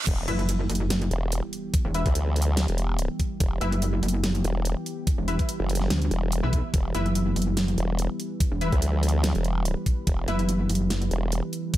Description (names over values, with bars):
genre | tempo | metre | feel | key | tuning
heavy wobble dubstep | 144 BPM | 4/4 | swing 54% on 16ths, half-time | E minor | A4 = 440 Hz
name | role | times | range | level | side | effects
reverse cymbal and impact | sound effects | 0.0-1.7 s | none | -34 LUFS | right 2 dB | none
lush unison pad | sustained chords | 0.1-11.8 s | E3 to B4 | -33 LUFS | right 2 dB | chorus, sidechain pumping
formant-sweep wobble bass | bass | 0.1-11.4 s | E1 to D2 | -25 LUFS | equal | chorus, overdrive
dubstep drum kit | drums | 0.1-11.8 s | crash cymbal, hi-hat, snare drum | -31 LUFS | equal | studio reverb
electronic kick drum | drums | 0.1-11.8 s | none | -24 LUFS | equal | studio reverb
orchestra-hit-like synth stab | stabs | 0.3-10.4 s | E4 to E5 | -34 LUFS | left 3 dB | built-in reverb, tape echo
pulsing pluck wobble bass | bass | 0.3-11.1 s | E1 to D2 | -24 LUFS | equal | chorus, overdrive
room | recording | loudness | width
digital ambience | high-pass filter | -23 LUFS | side -14 dB against mid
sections
0.1-11.8 A section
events
drop 0.1-11.8; impact 0.1-1.7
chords
0.1 Em